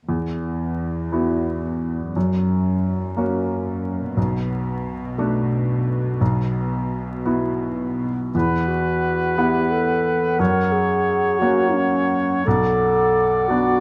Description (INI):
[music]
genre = cinematic, emotional film score for orchestra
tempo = 58 BPM (dotted quarters)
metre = 6/8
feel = rubato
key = unclear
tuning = A4 = 441 Hz
[part]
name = bright baby grand piano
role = accompaniment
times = 0.1-13.8 s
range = B1 to F#5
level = -24 LUFS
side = equal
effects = none
[part]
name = warm symphonic cello section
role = bass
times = 0.1-8.1 s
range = E2 to B2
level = -28 LUFS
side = equal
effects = none
[part]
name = dark clarinet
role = second line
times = 8.3-13.8 s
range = C#4 to A#4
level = -23 LUFS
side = equal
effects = none
[part]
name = mellow hollow concert flute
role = second line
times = 8.3-13.8 s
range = F#5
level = -28 LUFS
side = equal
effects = none
[part]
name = warm oboe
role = second line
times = 8.3-13.8 s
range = B4 to D5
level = -27 LUFS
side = equal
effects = none
[sound]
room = light reverb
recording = close, detailed microphones, vinyl crackle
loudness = -21 LUFS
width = mono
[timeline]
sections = 0.1-8.3 A section; 8.3-13.8 B section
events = none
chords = 0.1 Esus2; 2.2 F#; 4.2 Bm7; 6.2 Esus2/B; 8.3 Esus2; 10.4 F#; 12.5 Bm7